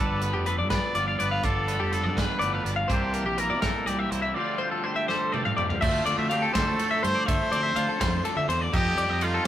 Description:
math rock and midwest emo; 82 BPM (dotted quarters); 6/8; straight; D minor; A4 = 440 Hz
bright trumpet; melody; 0.0-9.5 s; E4 to D5; -30 LUFS; equal
twelve-string electric guitar; accompaniment; 0.0-9.5 s; D2 to A4; -33 LUFS; right 3 dB
twelve-string electric guitar; arpeggios; 0.0-9.5 s; G4 to F5; -28 LUFS; left 2 dB
overdriven electric guitar; riff; 0.0-9.5 s; G2 to A4; -35 LUFS; equal
growling fingered electric bass; bass; 0.0-9.4 s; F1 to D3; -30 LUFS; equal; overdrive
modern studio drum kit; drums; 0.2-9.3 s; crash cymbal, hi-hat, kick drum, ride cymbal, snare drum, toms; -30 LUFS; equal
moderate stone room reverb, RT60 1.0 s; rough rehearsal-room recording; -23 LUFS; side -11 dB against mid
0.0-5.8 A section; 5.8-9.5 B section
drum fill 5.1-5.8
0.0 G9; 2.9 C9; 4.4 Dm11; 8.7 F9
0.71 | 1.44 2.17 | 2.90 3.63 | 4.36 5.09 | 5.82 6.55 | 7.28 8.00 | 8.73 9.46

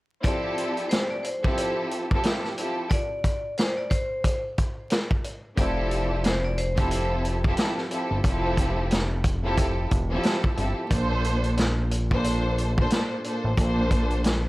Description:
hip hop, boom-bap hip-hop; 90 BPM; 4/4; swing 60% on 16ths; F major; A4 = 439 Hz
vibraphone with hard mallets; melody; 0.2-7.1 s; C5 to D5; -31 LUFS; left 1 dB; high-pass filter, low-pass filter
warm studio string section; accompaniment; 0.2-14.5 s; Bb2 to C5; -27 LUFS; equal; high-pass filter, low-pass filter
vintage drum kit; drums; 0.2-14.4 s; hi-hat, kick drum, snare drum; -25 LUFS; equal
fat analog bass; bass; 5.6-14.5 s; E1 to Bb1; -26 LUFS; equal; transformer saturation
light reverb; dry, gritty hardware recording, vinyl crackle; -23 LUFS; side -19 dB against mid
0.2-5.6 A section; 5.6-14.5 B section
0.2 Fmaj9; 10.9 Bbmaj9
| 0.24 0.91 1.57 2.24 | 2.91 3.57 4.24 4.91 | 5.57 6.24 6.91 7.57 | 8.24 8.91 9.57 10.24 | 10.91 11.57 12.24 12.91 | 13.57 14.24

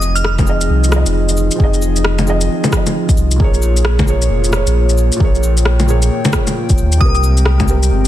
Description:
future garage; 133 BPM; 4/4; swing 63% on 16ths; F minor; A4 = 438 Hz
felt-muted upright piano; accompaniment; 0.0-8.1 s; Bb2 to Eb5; -20 LUFS; right 2 dB; vintage 12-bit sampler grit, sidechain pumping, tape echo
dark analog pad; sustained chords; 0.1-8.1 s; Ab3 to G5; -22 LUFS; left 2 dB; chorus, sidechain pumping
warm sub bass; bass; 0.0-8.1 s; F1 to Eb2; -14 LUFS; equal; sidechain pumping
electronic cabasa, shaker, rim click and bongos; drums; 0.0-8.1 s; -19 LUFS; left 2 dB; soft clipping on snare
glassy synth bell; melody; 0.2-0.8, 7.0-7.2 s; Eb6 to F6; -22 LUFS; equal; chorus, phaser, tape echo
electronic kick drum; drums; 0.4-7.7 s; -14 LUFS; equal
light reverb; dense, heavily limited modern master; -11 LUFS; side -13 dB against mid
0.0-8.1 A section
0.0 Fm7; 3.4 Bbm7; 7.0 Abmaj7
0.24 0.69 1.15 | 1.60 2.05 2.50 2.95 | 3.40 3.85 4.30 4.76 | 5.21 5.66 6.11 6.56 | 7.01 7.46 7.91

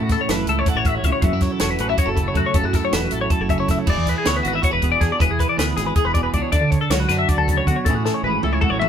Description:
math rock and midwest emo; 317 BPM (eighths); 7/8; straight; A major; A4 = 440 Hz
twelve-string electric guitar; accompaniment; 0.0-8.9 s; F#2 to A4; -24 LUFS; right 5 dB
twelve-string electric guitar; arpeggios; 0.0-8.9 s; F#4 to E5; -22 LUFS; left 5 dB; phaser
growling fingered electric bass; bass; 0.0-8.9 s; E1 to D3; -24 LUFS; equal; overdrive
compact cocktail drum kit; drums; 0.1-8.9 s; crash cymbal, hi-hat, kick drum, snare drum, toms; -22 LUFS; equal
light reverb; band playing live in one room; -17 LUFS; side -8 dB against mid
0.0-8.9 A section
drum fill 8.1-8.9
0.0 A6; 1.2 F#m7; 3.9 E7; 6.5 Dmaj7; 7.9 Amaj9
0.10 0.29 0.47 0.66 0.85 1.04 | 1.23 1.42 1.61 1.80 1.99 2.17 2.36 | 2.55 2.74 2.93 3.12 3.31 3.50 3.69 | 3.88 4.07 4.25 4.45 4.63 4.82 5.01 | 5.20 5.39 5.58 5.77 5.96 6.15 6.34 | 6.53 6.72 6.91 7.10 7.29 7.48 7.67 | 7.86 8.05 8.24 8.43 8.62 8.81

